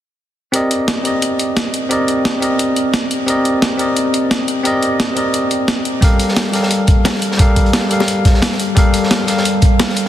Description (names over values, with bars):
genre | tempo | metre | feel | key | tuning
liquid drum and bass | 175 BPM | 4/4 | swing 54% on 16ths | unclear | A4 = 440 Hz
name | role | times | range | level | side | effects
bell-like tine electric piano | accompaniment | 0.5-10.1 s | G3 to F5 | -16 LUFS | equal | low-pass filter, ping-pong delay
breakbeat sampler-style drum kit | drums | 0.5-10.0 s | hi-hat, snare drum | -19 LUFS | equal | none
crunchy breakbeat drum kit | drums | 6.0-10.1 s | hi-hat, snare drum | -23 LUFS | right 1 dB | high-pass filter on hats, high-pass filter on snare, high-pass filter on room
electronic kick drum | drums | 6.0-9.7 s | none | -11 LUFS | equal | none
bongos | percussion | 7.1-9.9 s | none | -24 LUFS | left 6 dB | none
room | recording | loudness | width
moderate huge ambient reverb, RT60 4.0 s | dense, heavily limited modern master | -13 LUFS | side -12 dB against mid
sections
0.5-10.1 A section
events
filter sweep on tine electric piano 0.5-10.1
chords
0.5 Cm9; 6.0 Gm9